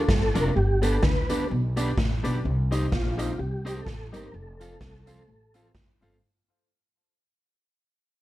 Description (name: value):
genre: ska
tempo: 127 BPM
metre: 4/4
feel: swing 56% on 8ths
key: unclear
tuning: A4 = 439 Hz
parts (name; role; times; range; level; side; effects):
- mellow tonewheel organ; melody; 0.0-5.7 s; F4 to B4; -30 LUFS; equal; chorus vibrato, fast rotary speaker
- electric guitar at the edge of break-up; accompaniment; 0.0-6.2 s; B3 to Bb4; -32 LUFS; right 2 dB; none
- clear upright piano; stabs; 0.0-6.2 s; D4 to F5; -36 LUFS; left 4 dB; none
- electric guitar at the edge of break-up; riff; 0.1-6.1 s; F2 to D3; -33 LUFS; left 3 dB; none
- upright bass; bass; 0.1-6.2 s; F1 to D2; -27 LUFS; equal; none
- street-band drum kit; drums; 0.1-6.1 s; hi-hat, kick drum, snare drum; -28 LUFS; equal; none
room: light reverb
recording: dark, warm production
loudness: -23 LUFS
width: side -15 dB against mid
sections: 0.0-6.2 A section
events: fade-out 0.0-6.2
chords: 0.0 Bb; 0.6 G; 2.4 Cm; 4.3 F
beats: 0.09 | 0.56 1.03 1.50 1.97 | 2.45 2.92 3.39 3.86 | 4.33 4.81 5.28 5.75